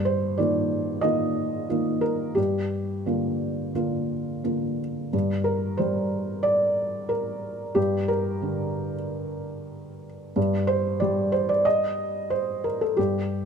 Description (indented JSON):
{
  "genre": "neoclassical minimalist piano",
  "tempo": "91 BPM",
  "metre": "4/4",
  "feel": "rubato",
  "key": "G minor",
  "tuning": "A4 = 440 Hz",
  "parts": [
    { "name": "felt-muted upright piano", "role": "solo", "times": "0.0-13.5 s", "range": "G2 to Eb5", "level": "-23 LUFS", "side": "equal", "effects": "none" }
  ],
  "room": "wet stone room reverb, RT60 1.3 s",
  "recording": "none",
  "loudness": "-23 LUFS",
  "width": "side -6 dB against mid",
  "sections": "0.0-5.1 A section; 5.1-13.5 A section",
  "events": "none",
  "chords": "0.0 Ebadd9/G; 2.4 Gm7; 5.1 Gm; 10.4 Eb/G",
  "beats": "0.39 1.03 1.69 | 2.37 3.07 3.76 4.44 | 5.13 5.79 6.45 7.11 | 7.77 8.43 9.08 9.72 | 10.37 11.01 11.65 12.30 | 12.97"
}